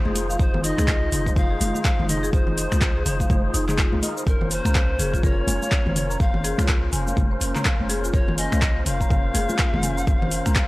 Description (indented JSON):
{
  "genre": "afro house",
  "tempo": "124 BPM",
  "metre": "4/4",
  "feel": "swing 60% on 16ths",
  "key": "unclear",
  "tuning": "A4 = 440 Hz",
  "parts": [
    { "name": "warm analog pad", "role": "sustained chords", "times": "0.0-10.7 s", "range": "Eb3 to F4", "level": "-34 LUFS", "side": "right 1 dB", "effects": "wide subtle chorus, sidechain pumping" },
    { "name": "tonewheel organ", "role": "stabs", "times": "0.0-10.7 s", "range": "Db4 to Db5", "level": "-32 LUFS", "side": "left 2 dB", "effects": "overdrive, fast rotary speaker, sidechain pumping, analog delay" },
    { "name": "marimba with medium hard mallets", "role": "arpeggios", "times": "0.1-10.7 s", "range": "Eb4 to Bb5", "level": "-30 LUFS", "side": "left 1 dB", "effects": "sidechain pumping, analog delay" },
    { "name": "warm 808-style bass", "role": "bass", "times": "0.1-10.7 s", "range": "F1 to C2", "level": "-26 LUFS", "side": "equal", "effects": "sidechain pumping" },
    { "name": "congas", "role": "percussion", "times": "0.1-10.7 s", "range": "none", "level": "-29 LUFS", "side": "left 1 dB", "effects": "none" },
    { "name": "afro-pop drum kit", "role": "drums", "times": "0.2-10.7 s", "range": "cabasa, finger snaps, handclaps, hi-hat, toms", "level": "-27 LUFS", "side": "equal", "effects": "none" },
    { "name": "bright polished pan flute", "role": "melody", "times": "0.4-10.7 s", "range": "Bb4 to F5", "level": "-30 LUFS", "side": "left 1 dB", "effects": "analog delay" },
    { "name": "electronic kick drum", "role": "drums", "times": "0.4-10.7 s", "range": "none", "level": "-21 LUFS", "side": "equal", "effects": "none" }
  ],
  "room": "little or no reverb",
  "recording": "dry, gritty hardware recording, lossy compression artefacts",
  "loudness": "-19 LUFS",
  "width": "side -20 dB against mid",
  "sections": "0.0-10.7 A section",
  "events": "none",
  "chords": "0.0 Fm7; 4.3 Bbmadd9/F",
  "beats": "| 0.40 0.88 1.36 1.85 | 2.33 2.81 3.30 3.78 | 4.27 4.75 5.24 5.72 | 6.20 6.69 7.17 7.65 | 8.14 8.62 9.11 9.59 | 10.07 10.56"
}